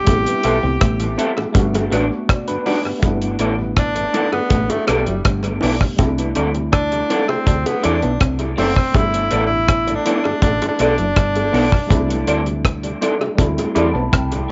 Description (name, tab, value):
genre	lovers rock reggae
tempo	81 BPM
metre	4/4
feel	straight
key	G major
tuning	A4 = 440 Hz
part	clear tenor saxophone	melody	0.0-12.5 s	G3 to G4	-23 LUFS	equal	cassette tape, tape echo
part	tine electric piano	accompaniment	0.0-14.5 s	G3 to B5	-28 LUFS	equal	overdrive, cassette tape, tape echo
part	electric guitar through a small old amp	riff	0.1-14.4 s	F#3 to E4	-29 LUFS	equal	none
part	fingered electric bass	bass	0.1-14.5 s	F#1 to E2	-25 LUFS	equal	none
part	deep reggae drum kit	drums	0.1-14.5 s	hi-hat, kick drum, rim click	-22 LUFS	equal	cassette tape, tape echo
part	bongos	percussion	0.1-14.5 s	none	-27 LUFS	equal	none
part	mellow tonewheel organ	accompaniment	0.3-14.4 s	D2 to G4	-34 LUFS	equal	none
part	electric guitar through a small old amp	stabs	0.4-14.0 s	B3 to E5	-26 LUFS	equal	analog chorus, cassette tape, tape echo
room	light reverb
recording	home recording on cassette, nothing above 7.7 kHz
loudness	-18 LUFS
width	mono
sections	0.0-3.0 A section; 3.0-14.5 B section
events	tenor saxophone solo 3.0-14.5; tine electric piano fill 13.4-14.5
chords	0.1 Am7; 1.6 Gmaj7; 3.0 G69; 6.0 C69; 9.0 G69; 11.9 C69; 13.4 D7sus4